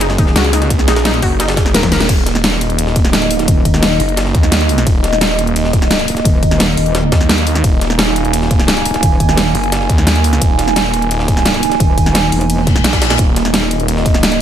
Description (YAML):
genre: dark technical drum and bass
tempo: 173 BPM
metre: 4/4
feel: straight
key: Eb minor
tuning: A4 = 441 Hz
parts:
  - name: dark analog pad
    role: sustained chords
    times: 0.0-14.4 s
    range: Bb3 to Ab5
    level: -18 LUFS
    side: right 3 dB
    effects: chorus, phaser, sidechain pumping
  - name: wide unison pluck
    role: arpeggios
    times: 0.0-2.0 s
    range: Eb4 to Bb4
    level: -20 LUFS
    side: left 4 dB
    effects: vintage 12-bit sampler grit, sidechain pumping, digital delay
  - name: snarling distorted saw bass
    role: bass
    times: 0.0-14.4 s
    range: Eb1 to Eb2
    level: -16 LUFS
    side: equal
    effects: distortion, tube saturation, sidechain pumping
  - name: dubstep drum kit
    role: drums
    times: 0.0-14.4 s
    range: crash cymbal, hi-hat, snare drum, toms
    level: -16 LUFS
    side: equal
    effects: none
  - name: jungle sampler-style drum kit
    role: drums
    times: 0.0-14.4 s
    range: hi-hat, ride cymbal, snare drum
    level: -23 LUFS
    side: equal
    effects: high-pass filter on snare, high-pass filter on cymbals, high-pass filter on hats, high-pass filter on room
  - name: metallic wobble bass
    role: bass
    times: 0.2-0.3, 3.5-4.0, 6.3-9.5, 11.8-12.8 s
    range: Eb1 to Fb1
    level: -15 LUFS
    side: equal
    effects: chorus
  - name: electronic kick drum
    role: drums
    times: 0.2-14.1 s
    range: none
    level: -14 LUFS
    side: equal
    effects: none
  - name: reverse cymbal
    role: sound effects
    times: 12.6-13.2 s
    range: none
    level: -22 LUFS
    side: left 7 dB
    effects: none
room: digital ambience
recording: none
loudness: -11 LUFS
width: side -10 dB against mid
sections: 0.0-2.1 A section; 2.1-14.4 A section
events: drop 0.0-2.1, 2.1-14.4; drum fill 1.8; band accent 2.0; reverse cymbal 12.6-13.2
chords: 0.0 Eb5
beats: 0.01 0.36 | 0.70 1.05 1.40 1.75 | 2.09 2.44 2.79 3.13 | 3.48 3.83 4.17 4.52 | 4.87 5.21 5.56 5.91 | 6.25 6.60 6.95 7.29 | 7.64 7.99 8.34 8.68 | 9.03 9.38 9.72 10.07 | 10.42 10.76 11.11 11.46 | 11.80 12.15 12.50 12.84 | 13.19 13.54 13.88 14.23